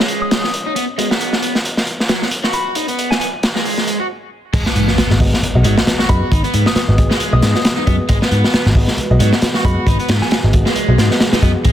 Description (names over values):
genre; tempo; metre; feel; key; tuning
breakbeat, breaks; 135 BPM; 4/4; swing 57% on 16ths; G# minor pentatonic; A4 = 440 Hz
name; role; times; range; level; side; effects
dark analog pad; sustained chords; 0.0-11.7 s; G#3 to C#5; -26 LUFS; right 2 dB; chorus, sidechain pumping
crunchy overdriven guitar; riff; 0.0-11.7 s; F#3 to F#4; -22 LUFS; equal; tube saturation
dark concert grand piano; stabs; 0.0-11.6 s; B3 to D#5; -24 LUFS; left 2 dB; ping-pong delay
crunchy breakbeat drum kit; drums; 0.0-11.7 s; crash cymbal, hi-hat, kick drum, snare drum; -16 LUFS; equal; high-pass filter on kick, high-pass filter on hats, high-pass filter on cymbals, high-pass filter on snare, high-pass filter on room
soft synth bell; melody; 0.2-3.3, 6.1-10.4 s; G#5 to D#6; -25 LUFS; left 2 dB; chorus, phaser, telephone sound, ping-pong delay
picked electric bass; bass; 4.5-11.7 s; G#1 to G#2; -15 LUFS; equal; none
impact; sound effects; 4.5-6.3 s; none; -23 LUFS; equal; none
room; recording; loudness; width
light reverb; dense, heavily limited modern master; -13 LUFS; side -11 dB against mid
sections
0.0-4.5 A section; 4.5-11.7 B section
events
stop 4.1-4.5; drop 4.5-11.7; impact 4.5-6.3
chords
0.0 G#m7